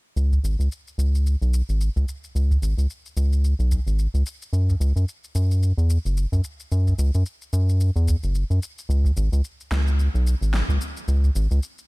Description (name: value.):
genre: organic downtempo.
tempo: 110 BPM.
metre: 4/4.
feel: swing 58% on 16ths.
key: C# minor.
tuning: A4 = 443 Hz.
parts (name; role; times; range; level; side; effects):
round analog bass; bass; 0.2-11.6 s; F#1 to F#2; -19 LUFS; equal; none.
electronic shaker and snare drum; drums; 0.2-11.9 s; none; -36 LUFS; left 1 dB; none.
udu; percussion; 0.3-11.3 s; none; -26 LUFS; right 1 dB; none.
room: little or no reverb.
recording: none.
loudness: -20 LUFS.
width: side -26 dB against mid.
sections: 0.2-11.9 A section.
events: filter sweep on analog synth bass 0.2-11.9.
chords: none.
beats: | 0.17 0.71 1.26 1.80 | 2.35 2.90 3.44 3.99 | 4.53 5.08 5.62 6.17 | 6.71 7.26 7.80 8.35 | 8.90 9.44 9.99 10.53 | 11.08 11.62.